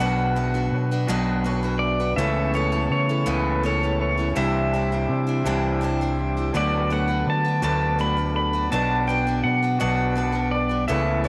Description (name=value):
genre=rock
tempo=55 BPM (dotted quarters)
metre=6/8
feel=straight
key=unclear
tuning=A4 = 443 Hz
part: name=pedal steel guitar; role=melody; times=0.0-11.3 s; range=B4 to B5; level=-28 LUFS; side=equal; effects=none
part: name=bright upright piano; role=accompaniment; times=0.0-11.3 s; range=D4 to A5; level=-41 LUFS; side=equal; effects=none
part: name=picked steel-string acoustic guitar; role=accompaniment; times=0.0-11.3 s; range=B2 to C5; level=-33 LUFS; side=equal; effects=none
part: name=tonewheel organ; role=sustained chords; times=0.0-11.3 s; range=B4 to D6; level=-36 LUFS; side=equal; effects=slow rotary speaker
part: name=electric guitar through a small old amp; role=riff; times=0.0-11.3 s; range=B2 to F#4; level=-29 LUFS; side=equal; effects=none
part: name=fingered electric bass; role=bass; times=0.0-11.3 s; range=B1 to D3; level=-28 LUFS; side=equal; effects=none
room=moderate spring reverb, RT60 1.5 s, small room ambience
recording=none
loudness=-23 LUFS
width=mono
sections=0.0-11.3 A section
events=upright piano fill 5.4-6.5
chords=0.0 Bm; 2.2 Aadd9/C#; 4.4 Cadd9; 6.5 D6; 8.7 Bm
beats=1.08 | 2.17 3.27 | 4.36 5.45 | 6.54 7.62 | 8.71 9.80 | 10.89